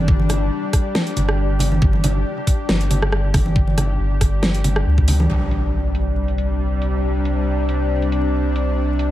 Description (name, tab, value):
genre	deep dubstep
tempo	138 BPM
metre	4/4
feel	swing 54% on 16ths, half-time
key	unclear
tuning	A4 = 435 Hz
part	bowed-like drone	sustained chords	0.0-9.1 s	C3 to G4	-24 LUFS	left 2 dB	built-in reverb
part	soft dub sub bass	bass	0.0-9.1 s	G1 to D2	-19 LUFS	equal	tube saturation
part	electronic kick drum	drums	0.1-5.1 s	none	-18 LUFS	equal	none
part	congas	percussion	0.2-5.3 s	none	-24 LUFS	right 1 dB	dub echo
part	dubstep drum kit	drums	0.3-9.1 s	hi-hat, rim click, snare drum	-23 LUFS	equal	low-pass filter on snare, low-pass filter on hats
part	impact	sound effects	5.3-7.0 s	none	-26 LUFS	equal	none
room	light reverb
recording	echo-heavy mix, vinyl crackle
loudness	-16 LUFS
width	side -14 dB against mid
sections	0.0-5.3 A section; 5.3-9.1 B section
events	impact 5.3-7.0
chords	0.0 G5; 5.3 C5